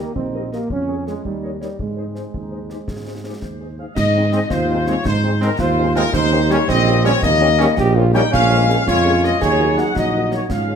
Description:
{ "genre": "military-style march for wind band", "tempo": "110 BPM (dotted quarters)", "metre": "6/8", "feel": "straight", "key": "Ab major", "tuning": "A4 = 440 Hz", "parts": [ { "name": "warm trumpet section", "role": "melody", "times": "0.0-10.8 s", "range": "Bb4 to G5", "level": "-23 LUFS", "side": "left 4 dB", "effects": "none" }, { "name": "clear euphonium", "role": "second line", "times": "0.0-10.8 s", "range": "Bb3 to Ab4", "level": "-22 LUFS", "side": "right 2 dB", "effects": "none" }, { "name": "warm woodwind section", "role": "second line", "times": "0.0-10.8 s", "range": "Eb4 to G5", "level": "-27 LUFS", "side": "left 2 dB", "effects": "none" }, { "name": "dark French horn section", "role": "accompaniment", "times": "0.0-10.8 s", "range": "Ab3 to Db5", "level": "-27 LUFS", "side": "left 6 dB", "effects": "none" }, { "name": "mellow trombone section", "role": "sustained chords", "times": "0.0-10.8 s", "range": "Gb3 to Eb4", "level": "-25 LUFS", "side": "right 2 dB", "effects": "none" }, { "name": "dark tuba", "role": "bass", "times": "0.0-10.8 s", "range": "Bb1 to Ab2", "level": "-20 LUFS", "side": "right 2 dB", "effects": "none" }, { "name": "concert bass drum, concert snare drum and clash cymbals", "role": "drums", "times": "0.2-10.7 s", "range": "none", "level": "-28 LUFS", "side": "left 1 dB", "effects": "none" }, { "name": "small flute group", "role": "second line", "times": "3.8-10.8 s", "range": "Bb4 to G5", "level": "-24 LUFS", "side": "left 4 dB", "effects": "none" } ], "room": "wet recital hall reverb, RT60 1.7 s", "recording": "none", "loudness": "-14 LUFS", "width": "side -7 dB against mid", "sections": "0.0-4.0 A section; 4.0-10.8 B section", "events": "none", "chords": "0.0 Eb; 0.7 Db/F; 1.2 Eb7; 1.8 Ab; 6.2 Eb7; 8.3 Bbm7; 9.4 Ebm7" }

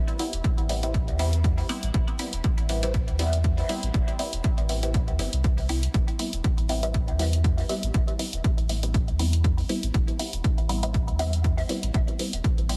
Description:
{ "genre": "dub techno", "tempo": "120 BPM", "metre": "4/4", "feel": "swing 55% on 16ths", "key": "A minor", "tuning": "A4 = 436 Hz", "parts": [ { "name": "warm sub bass", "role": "bass", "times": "0.0-12.8 s", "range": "E1 to E2", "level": "-29 LUFS", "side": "equal", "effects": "sidechain pumping" }, { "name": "electronic hi-hat", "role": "drums", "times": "0.1-12.8 s", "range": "none", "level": "-37 LUFS", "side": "equal", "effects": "none" }, { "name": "filtered dub chord stab", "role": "stabs", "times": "0.2-12.8 s", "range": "G3 to E4", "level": "-34 LUFS", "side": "equal", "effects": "phaser, sidechain pumping, dub echo" }, { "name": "electronic kick drum", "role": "drums", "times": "0.4-12.6 s", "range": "none", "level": "-27 LUFS", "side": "equal", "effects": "none" } ], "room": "little or no reverb", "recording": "dense, heavily limited modern master", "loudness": "-25 LUFS", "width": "mono", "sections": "0.0-12.8 A section", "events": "none", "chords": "0.0 Am7" }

